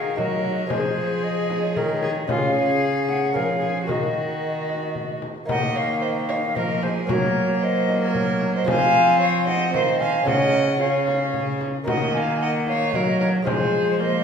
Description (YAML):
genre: classical, renaissance-style consort dance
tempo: 113 BPM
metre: 3/4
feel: straight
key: Eb dorian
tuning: A4 = 439 Hz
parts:
  - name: hollow concert flute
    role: melody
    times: 0.0-14.2 s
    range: C5 to Ab5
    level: -25 LUFS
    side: left 4 dB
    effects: none
  - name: rich violin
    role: second line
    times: 0.0-14.2 s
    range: Gb4 to F5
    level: -26 LUFS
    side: right 2 dB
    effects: none
  - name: lute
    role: accompaniment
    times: 0.0-14.2 s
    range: Db3 to Gb5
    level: -28 LUFS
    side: right 2 dB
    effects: none
  - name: warm viola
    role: accompaniment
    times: 0.0-14.2 s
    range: Gb3 to Bb4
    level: -28 LUFS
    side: left 2 dB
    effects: none
  - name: rich cello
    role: bass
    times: 0.0-14.2 s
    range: Db3 to Gb3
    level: -26 LUFS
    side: right 2 dB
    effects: none
  - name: frame drum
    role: percussion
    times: 0.2-13.7 s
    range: none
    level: -31 LUFS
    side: left 2 dB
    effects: none
room: wet recital hall reverb, RT60 1.5 s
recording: recorded in a church or concert hall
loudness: -19 LUFS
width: side -7 dB against mid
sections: 0.0-5.5 A section; 5.5-14.2 A section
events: none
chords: 0.0 Ebm; 0.7 Fm; 2.3 Db; 3.9 Ebm; 7.1 Gb; 8.7 Fm; 10.3 Db; 11.9 Ebm; 13.5 Fm